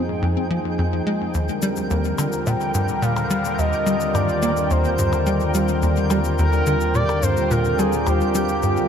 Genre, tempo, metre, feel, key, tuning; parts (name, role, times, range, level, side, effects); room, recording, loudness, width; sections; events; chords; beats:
ambient, sequencer-driven space music; 107 BPM; 4/4; straight; A4 = 440 Hz
sweeping resonant pad; sustained chords; 0.0-8.9 s; D3 to C5; -24 LUFS; equal; chorus
tight sequencer bass; riff; 0.0-8.8 s; Eb2 to Bb3; -22 LUFS; left 1 dB; wide subtle chorus, ping-pong delay
analog drone; bass; 0.0-8.9 s; Eb2 to F2; -27 LUFS; equal; chorus
twinkling granular texture; texture; 0.0-8.9 s; G5; -32 LUFS; right 1 dB; built-in reverb
cabasa and percussion blips; percussion; 1.3-8.9 s; -34 LUFS; left 7 dB; ping-pong delay
expressive portamento lead; melody; 1.9-8.9 s; G4 to G5; -24 LUFS; equal; chorus, ping-pong delay
moderate huge ambient reverb, RT60 8.8 s; -18 LUFS; side -8 dB against mid
0.0-8.9 A section
fade-in on synth texture 0.0-8.9
0.0 Fm; 1.3 Eb
0.22 0.78 | 1.34 1.90 2.46 3.02 | 3.58 4.14 4.71 5.27 | 5.83 6.39 6.95 7.51 | 8.07 8.63